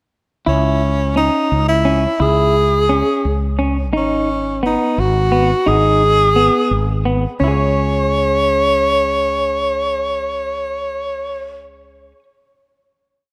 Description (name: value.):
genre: progressive instrumental, band music in an uneven meter.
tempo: 173 BPM (eighths).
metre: 5/8.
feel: straight.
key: C# minor.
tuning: A4 = 440 Hz.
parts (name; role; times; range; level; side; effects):
breathy tenor saxophone; melody; 0.5-11.6 s; C#4 to C#5; -19 LUFS; equal; none.
clean electric guitar; arpeggios; 0.5-12.2 s; B3 to C#5; -23 LUFS; equal; spring reverb.
mellow fretless electric bass; bass; 0.5-12.1 s; G#1 to C#2; -22 LUFS; equal; none.
room: moderate plate reverb, RT60 2.8 s.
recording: rough home demo mix.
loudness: -16 LUFS.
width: mono.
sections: 0.5-7.4 groove; 7.4-10.9 final chord.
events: none.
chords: 0.5 C#m; 3.9 G#m7; 7.4 C#5.